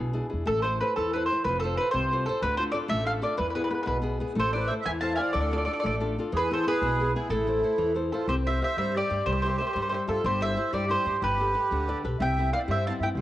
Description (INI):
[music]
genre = italian folk, Italian serenade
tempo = 123 BPM (dotted quarters)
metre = 6/8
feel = straight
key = A harmonic minor, C major from 8.3 s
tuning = A4 = 440 Hz
[part]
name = mandolin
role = melody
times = 0.0-13.1 s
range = G#4 to A5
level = -27 LUFS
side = equal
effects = cassette tape
[part]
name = flamenco guitar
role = accompaniment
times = 0.0-13.2 s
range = B2 to E5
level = -31 LUFS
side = left 2 dB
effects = cassette tape
[part]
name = upright bass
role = bass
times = 0.0-13.2 s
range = F1 to G2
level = -31 LUFS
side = equal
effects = none
[part]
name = accordion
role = second line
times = 4.4-13.2 s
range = E4 to F5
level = -34 LUFS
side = right 4 dB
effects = light tremolo tuning, cassette tape
[sound]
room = moderate lush hall reverb, RT60 2.5 s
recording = home recording on cassette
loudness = -24 LUFS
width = side -14 dB against mid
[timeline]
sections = 0.5-8.3 A section; 8.3-13.2 B section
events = nylon-string guitar fill 11.7-12.2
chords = 0.5 Am; 1.5 F; 2.4 Dm; 3.4 E; 4.4 Am; 5.3 Dm; 6.3 E; 7.3 Am; 8.3 C; 10.2 C/G; 11.2 Gadd9; 12.2 Cmaj7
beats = | 0.47 0.97 | 1.46 1.94 | 2.43 2.91 | 3.39 3.88 | 4.37 4.86 | 5.35 5.84 | 6.32 6.81 | 7.29 7.78 | 8.28 8.77 | 9.26 9.75 | 10.23 10.72 | 11.20 11.69 | 12.19 12.68 | 13.16